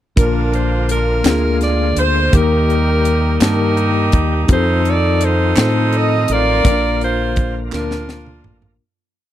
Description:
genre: slow gospel.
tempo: 56 BPM (dotted quarters).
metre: 6/8.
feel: straight.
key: Bb major.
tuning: A4 = 440 Hz.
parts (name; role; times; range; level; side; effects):
clear saxophone section; melody; 0.2-8.8 s; D4 to Eb5; -18 LUFS; equal; none.
mellow tine electric piano; accompaniment; 0.2-8.8 s; Bb2 to A5; -20 LUFS; left 2 dB; medium stereo tremolo.
bright tonewheel organ; sustained chords; 0.2-8.8 s; D3 to G4; -27 LUFS; right 3 dB; slow rotary speaker, overdrive, chorus vibrato.
deep dub fingered electric bass; bass; 0.2-8.8 s; A1 to A2; -18 LUFS; equal; none.
crisp fusion drum kit; drums; 0.2-8.8 s; hi-hat, kick drum, snare drum, toms; -16 LUFS; equal; none.
group handclap; percussion; 1.2-8.1 s; none; -28 LUFS; right 9 dB; none.
room: little or no reverb.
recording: dry, close 1970s-style studio recording.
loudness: -13 LUFS.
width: side -12 dB against mid.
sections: 0.2-8.8 chorus.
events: fade-out 6.7-8.8; drum fill 7.7-8.8.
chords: 0.2 Bb; 1.2 Bb7/D; 2.3 Eb; 4.5 F7; 6.7 Bb.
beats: | 0.17 1.25 | 2.33 3.41 | 4.49 5.57 | 6.65 7.73.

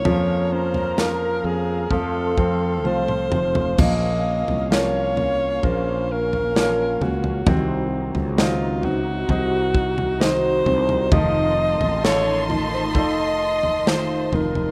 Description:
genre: pop ballad.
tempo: 65 BPM.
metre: 4/4.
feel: straight.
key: Bb harmonic minor from 3.8 s.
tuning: A4 = 443 Hz.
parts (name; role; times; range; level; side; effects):
breathy alto saxophone; melody; 0.0-14.7 s; F4 to Eb5; -25 LUFS; equal; none.
bright concert grand piano; accompaniment; 0.0-14.7 s; F3 to F5; -32 LUFS; equal; none.
muted symphonic string section; sustained chords; 0.0-14.7 s; C3 to C6; -35 LUFS; equal; none.
fingerpicked steel-string acoustic guitar; arpeggios; 0.0-14.7 s; F2 to Gb4; -30 LUFS; equal; none.
sustaining fretless electric bass; bass; 0.0-14.7 s; F1 to F2; -28 LUFS; equal; analog chorus.
modern studio drum kit; drums; 0.1-14.7 s; crash cymbal, kick drum, snare drum, toms; -25 LUFS; equal; none.
warm studio violin section; second line; 11.1-14.7 s; Eb5 to C6; -32 LUFS; equal; none.
room: light reverb.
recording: rough home demo mix.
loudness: -21 LUFS.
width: mono.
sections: 0.0-3.8 A section; 3.8-14.7 B section.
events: drum fill 2.9-3.8.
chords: 0.1 Bbm/F; 1.9 F; 3.8 Bbm; 7.5 Cdim; 11.1 F7.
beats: | 0.06 0.98 1.91 2.85 | 3.79 4.71 5.63 6.55 | 7.46 8.37 9.28 10.20 | 11.11 12.03 12.94 13.86.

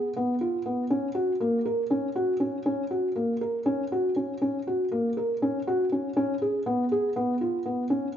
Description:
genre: contemporary instrumental, contemporary.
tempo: 240 BPM (eighths).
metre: 7/8.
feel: straight.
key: unclear.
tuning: A4 = 439 Hz.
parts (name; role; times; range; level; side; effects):
felt-muted upright piano; solo; 0.0-8.1 s; A#3 to A#4; -25 LUFS; equal; none.
room: wet recital hall reverb, RT60 1.6 s.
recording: nothing above 7.4 kHz.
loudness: -25 LUFS.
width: side -9 dB against mid.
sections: 0.0-8.2 A section.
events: none.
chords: none.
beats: 0.16 0.41 0.66 | 0.91 1.16 1.41 1.66 1.91 2.16 2.41 | 2.66 2.91 3.16 3.41 3.67 3.92 4.17 | 4.42 4.67 4.92 5.17 5.42 5.67 5.92 | 6.17 6.42 6.66 6.91 7.16 7.41 7.66 | 7.91.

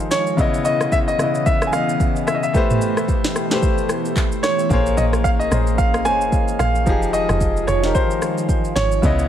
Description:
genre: amapiano.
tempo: 111 BPM.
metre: 4/4.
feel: swing 58% on 16ths.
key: unclear.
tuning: A4 = 440 Hz.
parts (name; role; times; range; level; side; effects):
clear baby grand piano; melody; 0.0-9.3 s; C5 to Ab5; -22 LUFS; right 1 dB; dub echo.
clear baby grand piano; accompaniment; 0.0-9.3 s; Db3 to Eb5; -23 LUFS; left 3 dB; none.
ensemble organ-string; sustained chords; 0.0-9.3 s; Cb3 to Eb5; -26 LUFS; right 1 dB; phaser, ensemble chorus, sidechain pumping.
afro-pop drum kit; drums; 0.0-9.3 s; handclaps, kick drum, rim click, shaker, snare drum, toms; -21 LUFS; equal; none.
deep log drum bass; bass; 4.7-9.3 s; F1 to Db2; -21 LUFS; equal; none.
room: light reverb.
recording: echo-heavy mix.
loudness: -16 LUFS.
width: side -10 dB against mid.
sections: 0.0-9.3 A section.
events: none.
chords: 0.4 Dbm9; 2.5 Am9; 4.7 Bbm9; 6.9 Fm9.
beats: | 0.38 0.92 1.46 2.00 | 2.54 3.08 3.62 4.17 | 4.71 5.25 5.79 6.33 | 6.87 7.41 7.95 8.49 | 9.03.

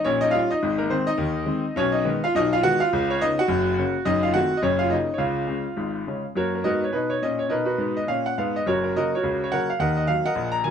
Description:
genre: jazz, stride piano.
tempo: 209 BPM.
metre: 4/4.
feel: swing 62% on 8ths.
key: F# major.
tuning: A4 = 440 Hz.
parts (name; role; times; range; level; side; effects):
bright grand piano; solo; 0.0-10.7 s; F#1 to A#5; -21 LUFS; equal; none.
room: moderate studio reverb, RT60 0.6 s.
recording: band playing live in one room.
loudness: -21 LUFS.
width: side -7 dB against mid.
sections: 0.0-6.4 A section; 6.4-10.7 B section.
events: none.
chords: 0.1 Gdim/Bb; 0.6 Ab; 1.8 G#m/B; 2.9 C#9; 3.5 F#; 4.1 F#dim7; 4.6 F#; 5.2 C#; 6.4 F#; 7.5 Bmaj7; 8.7 F#; 9.8 D#m.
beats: 0.06 0.34 | 0.63 0.92 1.20 1.49 | 1.78 2.06 2.35 2.64 | 2.92 3.21 3.50 3.78 | 4.07 4.36 4.64 4.93 | 5.21 5.50 5.79 6.07 | 6.36 6.65 6.93 7.22 | 7.51 7.79 8.08 8.37 | 8.65 8.94 9.23 9.51 | 9.80 10.09 10.37 10.66.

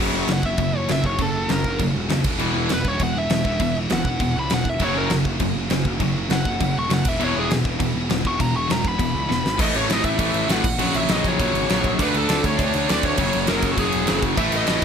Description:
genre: punk rock.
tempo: 200 BPM.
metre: 4/4.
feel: straight.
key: unclear.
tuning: A4 = 438 Hz.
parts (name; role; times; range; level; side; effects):
biting overdriven guitar; riff; 0.0-14.8 s; E2 to D4; -25 LUFS; left 11 dB; none.
cranked stack guitar; riff; 0.0-14.8 s; E2 to D4; -26 LUFS; right 12 dB; overdrive.
high-gain distorted guitar; riff; 0.0-9.5, 14.4-14.8 s; E2 to A3; -30 LUFS; left 1 dB; distortion.
fuzz picked electric bass; bass; 0.0-14.8 s; E1 to D#2; -26 LUFS; equal; overdrive.
high-gain lead guitar; melody; 0.3-14.8 s; F#4 to C#6; -26 LUFS; equal; distortion.
big rock drum kit; drums; 0.3-14.8 s; crash cymbal, kick drum, snare drum; -24 LUFS; equal; none.
room: light reverb.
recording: none.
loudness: -18 LUFS.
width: side -7 dB against mid.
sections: 0.0-9.6 A section; 9.6-14.8 B section.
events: lead electric guitar solo 0.0-9.6; drum fill 9.3.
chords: 0.0 F#5; 2.2 E5; 4.8 F#5; 7.1 E5; 9.6 A5; 10.6 F#/A#; 12.0 D5; 13.2 F#5.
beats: | 0.00 0.30 0.60 0.90 | 1.20 1.50 1.80 2.10 | 2.40 2.70 3.00 3.30 | 3.60 3.90 4.20 4.50 | 4.80 5.10 5.40 5.70 | 6.00 6.30 6.60 6.90 | 7.20 7.50 7.80 8.10 | 8.40 8.70 9.00 9.30 | 9.60 9.89 10.19 10.49 | 10.79 11.09 11.39 11.69 | 11.98 12.28 12.58 12.88 | 13.18 13.48 13.77 14.07 | 14.37 14.67.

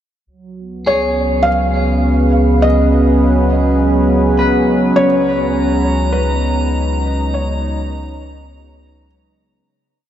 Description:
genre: ambient.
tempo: 51 BPM.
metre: 4/4.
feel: straight.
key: unclear.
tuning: A4 = 437 Hz.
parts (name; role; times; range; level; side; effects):
analog drone; drone; 3.6-9.8 s; Db3 to Ab3; -29 LUFS; left 1 dB; none.
warm analog pad; sustained chords; 0.3-9.7 s; Gb3 to Cb5; -16 LUFS; right 1 dB; chorus, shimmer reverb.
round analog bass; bass; 0.3-9.6 s; Db2; -18 LUFS; equal; none.
felt-muted upright piano; melody; 0.9-9.1 s; Cb5 to F5; -19 LUFS; left 1 dB; shimmer reverb, diffuse ambient delay.
clean electric guitar; arpeggios; 0.9-5.5 s; Ab4 to Cb5; -26 LUFS; left 1 dB; shimmer reverb, diffuse ambient delay.
drifting glass-harmonics texture; texture; 5.3-9.7 s; Bb5; -27 LUFS; right 1 dB; chorus, built-in reverb, shimmer reverb.
room: wet huge ambient reverb, RT60 9.6 s.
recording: dark, warm production.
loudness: -12 LUFS.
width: side -10 dB against mid.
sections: 0.3-9.7 A section.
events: fade-out 5.0-9.7.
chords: 0.3 Db7sus4; 5.0 Cbadd9/Db.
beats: | 0.27 1.45 2.62 3.80 | 4.98 6.15 7.33 8.51.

